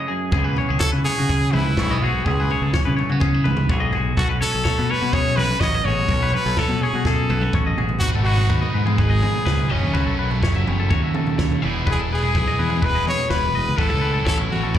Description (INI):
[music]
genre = math rock and midwest emo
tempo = 125 BPM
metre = 4/4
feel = straight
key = unclear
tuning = A4 = 440 Hz
[part]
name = twangy electric guitar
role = accompaniment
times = 0.0-14.8 s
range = E2 to G#4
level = -29 LUFS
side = right 7 dB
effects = warbly pitch drift, slapback echo
[part]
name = twangy electric guitar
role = arpeggios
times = 0.0-14.8 s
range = F#4 to E5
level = -27 LUFS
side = left 8 dB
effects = slapback echo
[part]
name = growling fingered electric bass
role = bass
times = 0.3-14.8 s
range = E1 to C#3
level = -21 LUFS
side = equal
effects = overdrive
[part]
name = compact cocktail drum kit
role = drums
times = 0.3-14.8 s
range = kick drum, snare drum, toms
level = -24 LUFS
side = equal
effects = none
[part]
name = brilliant trumpet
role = melody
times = 0.8-14.8 s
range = C#4 to D#5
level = -24 LUFS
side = equal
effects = slapback echo, digital delay
[part]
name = biting overdriven guitar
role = riff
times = 8.0-14.8 s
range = F#2 to E4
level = -27 LUFS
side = right 1 dB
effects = slapback echo
[sound]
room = little or no reverb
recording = live gig heard through the venue's PA, club reverb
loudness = -18 LUFS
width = side -10 dB against mid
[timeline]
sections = 0.0-8.0 A section; 8.0-14.8 B section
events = drum fill 7.1-8.0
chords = 0.3 C#m7; 3.9 B7sus2; 8.0 G#m7; 9.7 F#m7; 11.6 Emaj7; 13.8 A